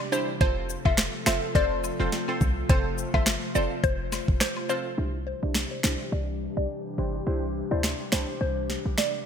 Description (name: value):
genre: dancehall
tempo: 105 BPM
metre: 4/4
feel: swing 56% on 16ths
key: C major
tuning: A4 = 442 Hz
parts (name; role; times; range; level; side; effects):
- airy breathy pad; sustained chords; 0.0-9.3 s; C3 to C5; -34 LUFS; left 2 dB; chorus, sidechain pumping, low-pass filter
- mallet-like synth pluck; melody; 0.1-9.1 s; C5 to E5; -31 LUFS; left 1 dB; chorus, phaser, low-pass filter, digital delay
- punchy chord stab; accompaniment; 0.1-8.4 s; C4 to C5; -32 LUFS; right 2 dB; chorus, low-pass filter
- cabasa and woodblock; percussion; 0.1-4.8 s; none; -39 LUFS; left 10 dB; none
- short 808-style bass; bass; 0.4-9.0 s; E1 to D2; -30 LUFS; equal; none
- afro-pop drum kit; drums; 0.4-9.1 s; finger snaps, hi-hat, kick drum, rim click, snare drum; -26 LUFS; equal; none
room: light reverb, digital ambience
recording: bright 1980s-style digital production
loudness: -24 LUFS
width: side -8 dB against mid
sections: 0.0-5.0 A section; 5.0-9.3 B section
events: filter sweep 5.0-9.3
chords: 0.4 F; 5.0 Cadd9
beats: | 0.41 0.98 1.55 2.12 | 2.69 3.27 3.84 4.41 | 4.98 5.55 6.12 6.70 | 7.27 7.84 8.41 8.98